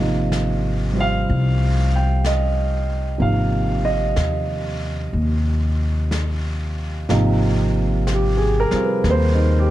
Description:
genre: jazz ballad.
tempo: 62 BPM.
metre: 4/4.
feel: swing 67% on 8ths.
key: Ab major.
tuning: A4 = 439 Hz.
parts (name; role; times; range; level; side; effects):
warm concert grand piano; accompaniment; 0.0-9.7 s; C3 to G5; -21 LUFS; right 2 dB; plate reverb.
upright bass; bass; 0.0-9.7 s; Ab1 to Eb2; -20 LUFS; equal; none.
vintage brush drum kit; drums; 0.3-9.7 s; brushed snare drum, hi-hat, snare drum; -32 LUFS; left 1 dB; none.
room: light reverb.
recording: dark, warm production.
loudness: -17 LUFS.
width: side -14 dB against mid.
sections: 0.0-7.1 A section; 7.1-9.7 B section.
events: none.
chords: 0.0 Abmaj9.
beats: 0.33 1.28 2.24 | 3.20 4.16 5.13 6.11 | 7.09 8.06 9.04.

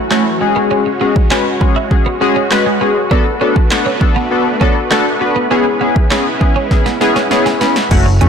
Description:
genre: dance-pop.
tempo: 100 BPM.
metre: 4/4.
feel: straight.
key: unclear.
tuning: A4 = 437 Hz.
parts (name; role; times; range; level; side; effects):
filtered supersaw swell; sustained chords; 0.0-8.3 s; E3 to B4; -20 LUFS; right 1 dB; phaser, sidechain pumping.
chorused polysynth; accompaniment; 0.1-8.3 s; G#3 to B4; -14 LUFS; left 3 dB; sidechain pumping.
twelve-string electric guitar; riff; 0.1-8.3 s; G#3 to E4; -21 LUFS; right 8 dB; lush chorus.
punchy analog drum machine; drums; 0.1-8.3 s; crash cymbal, handclaps, hi-hat, kick drum, snare drum; -15 LUFS; equal; overdrive.
vintage muted fingered electric bass; bass; 7.9-8.3 s; F#1 to F#2; -10 LUFS; equal; sidechain pumping.
room: light reverb.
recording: blown-out, overdriven recording, overdrive.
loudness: -11 LUFS.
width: side -7 dB against mid.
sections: 0.0-7.9 A section.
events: drum fill 6.7-7.9.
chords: 0.4 C#sus4; 3.1 Bm7; 5.5 C#m7.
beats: 0.11 | 0.71 1.31 1.91 2.51 | 3.11 3.71 4.31 4.91 | 5.51 6.11 6.71 7.31 | 7.91.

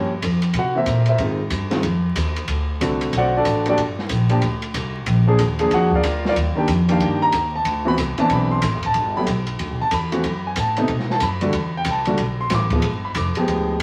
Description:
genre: jazz, small-group swing and bop.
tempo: 186 BPM.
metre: 4/4.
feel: swing 63% on 8ths.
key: G major from 8.9 s.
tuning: A4 = 440 Hz.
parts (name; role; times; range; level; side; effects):
warm concert grand piano; accompaniment; 0.0-13.8 s; C3 to D6; -22 LUFS; equal; none.
upright bass; bass; 0.0-13.8 s; D1 to C3; -25 LUFS; equal; none.
open jazz drum kit; drums; 0.2-13.8 s; hi-hat, kick drum, ride cymbal, snare drum; -29 LUFS; equal; none.
room: wet studio reverb, RT60 0.5 s.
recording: vinyl crackle.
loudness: -20 LUFS.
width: mono.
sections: 0.0-8.9 A section; 8.9-13.8 A section.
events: none.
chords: 0.0 Gm7b5; 0.6 C7; 1.2 Fm7; 2.5 D7; 3.8 Gm; 5.1 Bb7; 6.4 Ebmaj7; 7.7 D13; 8.9 Gmaj9; 10.2 F#dim; 10.9 B5; 11.5 Em11; 12.8 G7b9.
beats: 0.23 0.55 0.87 | 1.20 1.52 1.84 2.16 | 2.49 2.81 3.13 3.46 | 3.78 4.10 4.42 4.75 | 5.07 5.39 5.72 6.04 | 6.36 6.69 7.01 7.33 | 7.66 7.98 8.30 8.63 | 8.95 9.27 9.60 9.92 | 10.25 10.57 10.89 11.22 | 11.54 11.87 12.19 12.51 | 12.84 13.16 13.48 13.81.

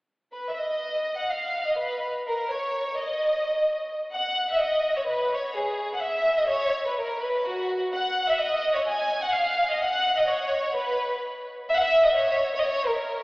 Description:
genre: mexican folk.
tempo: 126 BPM.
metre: 2/4.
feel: rubato.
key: unclear.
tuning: A4 = 440 Hz.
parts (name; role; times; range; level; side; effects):
warm symphonic violin section; solo; 0.3-13.2 s; F#4 to G#5; -23 LUFS; equal; none.
room: wet church reverb, RT60 3.1 s.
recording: recorded in a church or concert hall, AM radio sound.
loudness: -23 LUFS.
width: side -24 dB against mid.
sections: 0.3-4.1 A section; 4.1-11.7 B section; 11.7-13.2 C section.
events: none.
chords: none.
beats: | 0.30 0.79 | 1.27 1.75 | 2.23 2.69 | 3.16 3.64 | 4.12 4.60 | 5.08 5.55 | 6.01 6.48 | 6.95 7.42 | 7.91 8.39 | 8.86 9.33 | 9.80 10.26 | 10.73 11.20 | 11.68 12.16 | 12.64 13.12.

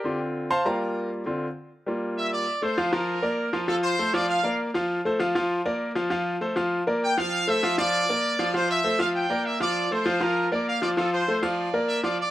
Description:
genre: latin.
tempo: 198 BPM.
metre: 4/4.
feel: straight.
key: unclear.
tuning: A4 = 440 Hz.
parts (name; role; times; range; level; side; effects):
bright concert grand piano; accompaniment; 0.0-12.2 s; D3 to C6; -24 LUFS; equal; none.
bright trumpet section; melody; 2.2-4.6, 7.0-12.3 s; A4 to G5; -26 LUFS; right 1 dB; slapback echo.
room: little or no reverb.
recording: recorded outdoors, with no room sound.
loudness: -23 LUFS.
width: side -14 dB against mid.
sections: 0.0-2.5 A section; 2.5-12.2 B section.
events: grand piano solo 0.0-2.5.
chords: 0.1 Dm7; 0.7 Gm7; 1.3 Dm7; 1.9 Gm7; 2.5 Fadd11; 3.1 Bb/F; 3.7 F6; 4.3 Bb/F; 4.9 F; 5.5 Bb/F; 6.1 F; 6.7 Bb6/F; 7.3 Fmaj7; 7.9 Bb/F; 8.5 Fmaj7; 9.2 Gm7; 9.8 Fadd11; 10.4 Bb/F; 11.0 F6; 11.6 Bb/F.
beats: | 0.06 0.36 0.66 0.97 | 1.27 1.57 1.87 2.17 | 2.48 2.78 3.08 3.38 | 3.69 3.99 4.29 4.59 | 4.90 5.20 5.50 5.81 | 6.11 6.41 6.72 7.02 | 7.33 7.63 7.93 8.24 | 8.54 8.85 9.15 9.46 | 9.76 10.06 10.37 10.67 | 10.98 11.28 11.59 11.89 | 12.20.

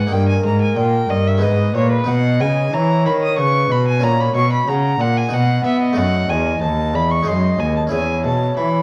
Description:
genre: classical, baroque-style sonata movement with continuo.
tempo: 92 BPM.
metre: 3/4.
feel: straight.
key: unclear.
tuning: A4 = 439 Hz.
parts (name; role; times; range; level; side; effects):
baroque flute; melody; 0.0-8.8 s; A#4 to F#5; -25 LUFS; equal; none.
rich violin; second line; 0.0-8.8 s; B4 to D#6; -24 LUFS; equal; none.
harpsichord; accompaniment; 0.0-8.8 s; D#2 to G#4; -26 LUFS; equal; none.
rich cello; bass; 0.0-8.8 s; D#2 to B3; -20 LUFS; equal; none.
room: moderate large studio reverb, RT60 1.2 s.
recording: worn, warbling old tape, cassette tape, warbly pitch drift.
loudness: -17 LUFS.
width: mono.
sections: 0.0-8.8 A section.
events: none.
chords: 0.1 D#/G; 1.4 G#m; 2.1 B; 4.0 F#/A#; 5.3 B; 6.0 D#dim; 7.3 G#7/F#; 7.9 C#m/E.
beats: | 0.11 0.77 1.43 | 2.08 2.73 3.38 | 4.03 4.68 5.32 | 5.97 6.62 7.26 | 7.92 8.57.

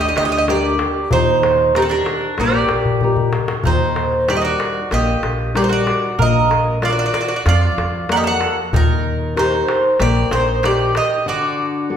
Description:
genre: greek folk, Greek bouzouki band.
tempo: 95 BPM.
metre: 4/4.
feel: straight.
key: unclear.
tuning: A4 = 440 Hz.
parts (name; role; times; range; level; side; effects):
Greek bouzouki; melody; 0.0-12.0 s; A4 to F#5; -19 LUFS; right 2 dB; none.
mandolin; second line; 0.0-12.0 s; C4 to Bb4; -23 LUFS; right 4 dB; none.
nylon-string guitar; accompaniment; 0.0-12.0 s; D3 to D5; -22 LUFS; left 3 dB; none.
upright bass; bass; 0.0-11.0 s; Bb1 to F2; -21 LUFS; equal; none.
darbuka; percussion; 0.0-11.1 s; none; -23 LUFS; left 4 dB; none.
room: wet recital hall reverb, RT60 1.5 s.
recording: recorded in a church or concert hall.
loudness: -14 LUFS.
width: side -8 dB against mid.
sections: 0.0-12.0 A section.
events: drum fill 2.9-3.6; break 11.3-12.0.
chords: 0.0 Gm; 1.1 Eb; 6.2 Bb; 8.7 Eb; 11.3 D.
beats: 0.48 | 1.12 1.75 2.38 3.02 | 3.65 4.28 4.92 5.55 | 6.18 6.82 7.45 8.09 | 8.72 9.36 9.99 10.63 | 11.27 11.90.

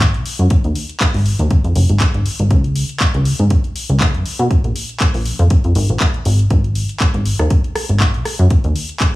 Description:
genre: filtered disco house.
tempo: 120 BPM.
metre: 4/4.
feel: swing 55% on 16ths.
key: G# dorian.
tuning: A4 = 440 Hz.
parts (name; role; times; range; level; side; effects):
plucky analog bass; bass; 0.0-8.7 s; F#1 to B2; -14 LUFS; equal; sidechain pumping, low-pass filter.
electronic kick drum; drums; 0.0-9.1 s; none; -14 LUFS; equal; overdrive, studio ambience.
house drum kit; drums; 0.0-9.1 s; handclaps, hi-hat, rim click; -22 LUFS; equal; overdrive, sidechain pumping on hats, studio ambience, sidechain pumping on cymbals.
room: little or no reverb.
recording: dry, gritty hardware recording, small room reverb.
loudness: -13 LUFS.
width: side -18 dB against mid.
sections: 0.0-9.2 A section.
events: filter sweep on analog synth bass 0.0-9.2.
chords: none.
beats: 0.01 | 0.51 1.01 1.51 2.01 | 2.51 3.01 3.51 4.01 | 4.51 5.01 5.51 6.01 | 6.51 7.01 7.51 8.01 | 8.51 9.01.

